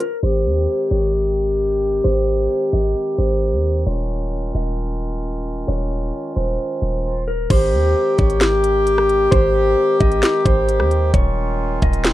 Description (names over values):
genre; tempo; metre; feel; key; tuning
hip hop, atmospheric cloud-rap; 132 BPM; 4/4; half-time; Ab major; A4 = 444 Hz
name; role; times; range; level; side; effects
mellow electric guitar; melody; 0.0-12.0 s; Bb4 to Eb5; -24 LUFS; right 3 dB; low-pass filter, ping-pong delay
warm woodwind section; sustained chords; 0.0-12.1 s; Eb3 to G4; -19 LUFS; left 1 dB; sidechain pumping
trap drum kit; drums; 0.0-0.1, 7.5-12.1 s; crash cymbal, hi-hat, kick drum, rim click, snare drum; -18 LUFS; equal; vintage 12-bit sampler grit
warm 808-style bass; bass; 0.2-12.1 s; Eb1 to Eb2; -20 LUFS; equal; none
room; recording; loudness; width
moderate small room reverb, RT60 0.5 s; rough home demo mix, low-pass filter; -16 LUFS; side -15 dB against mid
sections
0.2-7.5 A section; 7.5-12.1 B section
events
break 0.0; filter sweep 0.2-7.5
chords
0.2 Abmaj7; 3.9 Eb9sus4; 7.5 Abmaj7; 11.1 Eb9sus4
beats
| 0.23 0.68 1.14 1.59 | 2.05 2.50 2.96 3.41 | 3.87 4.32 4.78 5.23 | 5.68 6.14 6.59 7.05 | 7.50 7.96 8.41 8.87 | 9.32 9.78 10.23 10.68 | 11.14 11.59 12.05